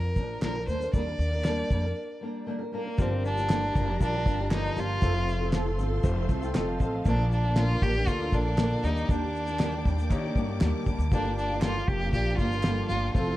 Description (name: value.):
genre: acoustic pop.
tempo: 118 BPM.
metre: 4/4.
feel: straight.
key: G minor.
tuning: A4 = 440 Hz.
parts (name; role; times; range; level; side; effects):
rich violin; melody; 0.0-13.4 s; Bb3 to D5; -31 LUFS; right 1 dB; none.
flamenco guitar; accompaniment; 0.0-13.4 s; G2 to Bb4; -32 LUFS; equal; double-tracked left and right.
upright bass; bass; 0.0-13.4 s; F1 to Eb3; -29 LUFS; equal; none.
cloth-damped thuddy drum kit; drums; 0.2-13.3 s; kick drum, shaker, snare drum; -28 LUFS; equal; none.
group handclap; percussion; 0.4-12.8 s; none; -46 LUFS; right 3 dB; none.
clear grand piano; accompaniment; 3.0-13.4 s; G3 to C6; -37 LUFS; left 4 dB; none.
warm symphonic string section; sustained chords; 3.0-13.4 s; Bb3 to D6; -41 LUFS; equal; none.
room: moderate studio reverb, RT60 0.8 s.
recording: worn, warbling old tape, cassette tape, warbly pitch drift.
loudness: -25 LUFS.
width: side -16 dB against mid.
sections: 0.0-3.0 A section; 3.0-13.4 B section.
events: break 2.0-3.0.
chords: 0.0 Bb; 0.7 Ebmaj7; 3.0 Gm7; 5.0 F; 7.1 Bb; 8.8 Ebmaj7; 11.1 Gm7.